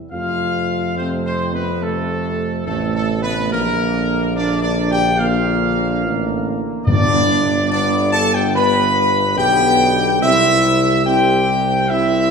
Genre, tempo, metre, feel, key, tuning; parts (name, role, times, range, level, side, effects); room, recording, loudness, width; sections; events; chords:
classical; 71 BPM; 4/4; straight; A4 = 440 Hz
clear trumpet section; melody; 0.1-12.3 s; A4 to B5; -18 LUFS; equal
clear French horn section; sustained chords; 0.1-12.3 s; A3 to B4; -22 LUFS; left 3 dB
warm trombone section; sustained chords; 0.1-12.3 s; C3 to C4; -24 LUFS; right 2 dB
clear tuba; bass; 0.1-12.3 s; G1 to F2; -21 LUFS; right 1 dB
timpani; percussion; 6.9-8.1 s; G2; -20 LUFS; left 1 dB
wet concert hall reverb, RT60 1.8 s; recorded in a church or concert hall; -15 LUFS; side -5 dB against mid
0.0-12.3 A section
0.1 F; 3.5 Bb; 6.9 G; 10.2 C